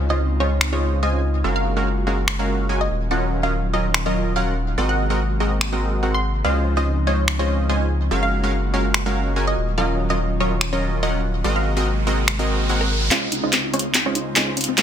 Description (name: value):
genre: future bass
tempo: 144 BPM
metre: 4/4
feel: swing 55% on 16ths, half-time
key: Db major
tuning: A4 = 438 Hz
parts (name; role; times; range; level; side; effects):
- wide unison pluck; melody; 0.0-14.6 s; Db4 to C6; -27 LUFS; equal; digital delay
- airy breathy pad; sustained chords; 0.0-14.8 s; C3 to Gb4; -30 LUFS; right 1 dB; chorus, vintage 12-bit sampler grit
- supersaw stab; riff; 0.0-14.8 s; Gb3 to Ab5; -24 LUFS; right 1 dB; low-pass filter, digital delay
- saturated sub bass; bass; 0.0-14.8 s; Eb1 to Db2; -23 LUFS; equal; high-pass filter
- dubstep drum kit; drums; 0.6-14.8 s; finger snaps, handclaps, hi-hat; -20 LUFS; equal; overdrive, soft clipping on snare
- riser; sound effects; 11.6-14.8 s; none; -30 LUFS; right 2 dB; none
- wide unison pluck; arpeggios; 13.1-14.8 s; Bb3 to F4; -29 LUFS; left 4 dB; digital delay
room: light reverb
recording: dense, heavily limited modern master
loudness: -18 LUFS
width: side -9 dB against mid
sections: 0.0-13.1 A section; 13.1-14.8 B section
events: riser 11.6-13.1; build-up 13.1-14.8; drum fill 13.1-14.8; filter sweep on synth pluck 13.1-14.8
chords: 0.0 Dbmaj9; 1.4 Gbmaj9; 2.9 Ebm9; 4.8 Ab9; 6.4 Dbmaj9; 8.1 Gbmaj9; 9.6 Ebm9; 11.4 Ab9; 13.1 Dbmaj9